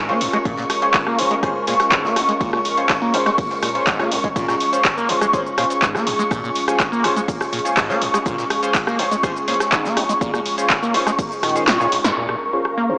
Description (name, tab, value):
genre	acid house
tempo	123 BPM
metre	4/4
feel	straight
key	Bb minor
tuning	A4 = 440 Hz
part	warm analog pad	sustained chords	0.0-13.0 s	Ab3 to Bb4	-27 LUFS	equal	chorus, sidechain pumping
part	liquid acid bass	riff	0.0-12.9 s	Bb1 to Bb3	-24 LUFS	equal	phaser, overdrive, lush chorus, analog delay
part	ethereal airy pad	texture	0.0-13.0 s	Bb4 to Db6	-21 LUFS	equal	ensemble chorus, built-in reverb, sidechain pumping
part	band-passed chord stab	stabs	0.1-13.0 s	Db4 to Db5	-25 LUFS	left 1 dB	chorus, phaser, analog delay
part	jazz brush drum kit	drums	0.1-12.0 s	hi-hat, ride cymbal, snare drum	-33 LUFS	equal	none
part	round analog bass	bass	0.2-11.6 s	Bb1 to Bb2	-44 LUFS	equal	none
part	punchy analog drum machine	drums	0.2-12.8 s	handclaps, hi-hat, rim click, shaker, snare drum	-21 LUFS	equal	none
part	electronic kick drum	drums	0.5-11.3 s	none	-25 LUFS	equal	none
part	sub drop	sound effects	12.2-13.0 s	none	-47 LUFS	equal	none
room	wet spring reverb, RT60 1.8 s, digital ambience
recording	home recording on cassette, small speaker sound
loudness	-16 LUFS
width	side -27 dB against mid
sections	0.0-12.2 A section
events	drum fill 11.7-12.2; band accent 12.0; impact 12.2-13.0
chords	0.0 Bbm7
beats	| 0.46 0.94 1.43 1.92 | 2.41 2.89 3.38 3.87 | 4.36 4.85 5.33 5.82 | 6.31 6.80 7.29 7.77 | 8.26 8.75 9.24 9.72 | 10.21 10.70 11.19 11.68 | 12.16 12.65